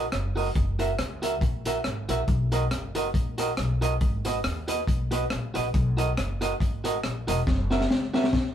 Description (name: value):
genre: ska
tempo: 139 BPM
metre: 4/4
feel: swing 55% on 8ths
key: B major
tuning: A4 = 440 Hz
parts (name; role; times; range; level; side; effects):
- electric guitar at the edge of break-up; accompaniment; 0.0-8.3 s; F#4 to E5; -29 LUFS; right 2 dB; none
- upright bass; bass; 0.0-8.5 s; E1 to D#2; -29 LUFS; equal; none
- crunchy breakbeat drum kit; drums; 0.1-8.4 s; hi-hat, kick drum, rim click, snare drum; -28 LUFS; left 1 dB; none
room: moderate studio reverb, RT60 0.8 s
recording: band playing live in one room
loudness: -24 LUFS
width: side -10 dB against mid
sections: 0.0-8.5 A section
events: drum fill 7.5-8.5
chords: 0.0 Bmaj7 (rootless); 0.6 F#7; 2.3 Bmaj7; 4.0 G#m7; 5.7 Bmaj7; 7.5 F#7